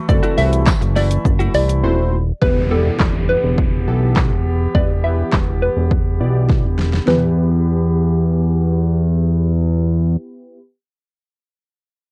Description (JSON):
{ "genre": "dance-pop", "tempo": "103 BPM", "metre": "4/4", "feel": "straight", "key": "E minor", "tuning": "A4 = 444 Hz", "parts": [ { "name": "warm woodwind section", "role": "sustained chords", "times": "0.0-10.2 s", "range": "E3 to G4", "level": "-30 LUFS", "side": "equal", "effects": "sidechain pumping, low-pass filter" }, { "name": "hollow square pluck", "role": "melody", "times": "0.1-8.8 s", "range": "A4 to E5", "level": "-24 LUFS", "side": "equal", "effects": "chorus, sidechain pumping, low-pass filter" }, { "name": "warm analog keys", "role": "accompaniment", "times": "0.1-10.6 s", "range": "A3 to D5", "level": "-28 LUFS", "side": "equal", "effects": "chorus, sidechain pumping, low-pass filter" }, { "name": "direct-recorded clean electric guitar", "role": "riff", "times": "0.1-1.7 s", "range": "A3 to F#4", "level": "-27 LUFS", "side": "equal", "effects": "analog chorus" }, { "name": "fat analog bass", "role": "bass", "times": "0.1-10.2 s", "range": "D#1 to E2", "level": "-19 LUFS", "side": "equal", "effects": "sidechain pumping" }, { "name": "deep house drum kit", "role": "drums", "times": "0.1-7.2 s", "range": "handclaps, hi-hat, kick drum, shaker, snare drum, toms", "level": "-20 LUFS", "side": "equal", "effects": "overdrive" }, { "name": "tambourine", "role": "percussion", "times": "0.7-0.8 s", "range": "none", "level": "-35 LUFS", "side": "equal", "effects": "none" }, { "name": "downlifter", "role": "sound effects", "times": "2.4-7.1 s", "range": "none", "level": "-32 LUFS", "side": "equal", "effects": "none" } ], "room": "little or no reverb", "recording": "worn, warbling old tape, cassette tape, warbly pitch drift", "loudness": "-17 LUFS", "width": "mono", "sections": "0.0-2.4 A section; 2.4-7.1 B section; 7.1-9.4 C section", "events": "drop 0.0-2.4; drums muted 1.8-2.4; filter sweep 2.4-7.1; drum fill 6.5-7.1", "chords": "0.0 F#m7b5; 2.4 Em" }